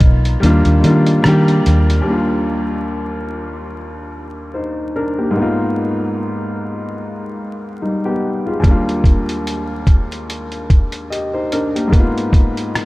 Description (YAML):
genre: lo-fi hip hop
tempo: 73 BPM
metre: 4/4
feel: swing 55% on 16ths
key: Eb major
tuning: A4 = 437 Hz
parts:
  - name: warm upright piano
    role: accompaniment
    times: 0.0-12.8 s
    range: Eb2 to Eb5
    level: -18 LUFS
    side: left 1 dB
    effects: none
  - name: vintage muted fingered electric bass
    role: bass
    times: 0.0-2.0 s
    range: Cb2 to Eb3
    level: -12 LUFS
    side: equal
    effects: none
  - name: lo-fi sampler-style drum kit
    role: drums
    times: 0.0-2.1, 8.6-12.8 s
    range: hi-hat, kick drum, rim click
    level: -15 LUFS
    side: equal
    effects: none
room: light reverb, small room ambience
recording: vinyl crackle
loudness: -14 LUFS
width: side -20 dB against mid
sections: 0.0-2.1 A section; 2.1-12.8 B section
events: kick muted 0.4-2.1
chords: 0.4 Ebmaj7; 5.4 Abm6; 8.6 Ebmaj7; 11.9 Abm6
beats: 0.42 1.25 | 2.07 2.89 3.71 4.53 | 5.36 6.18 7.00 7.82 | 8.64 9.46 10.29 11.11 | 11.93 12.75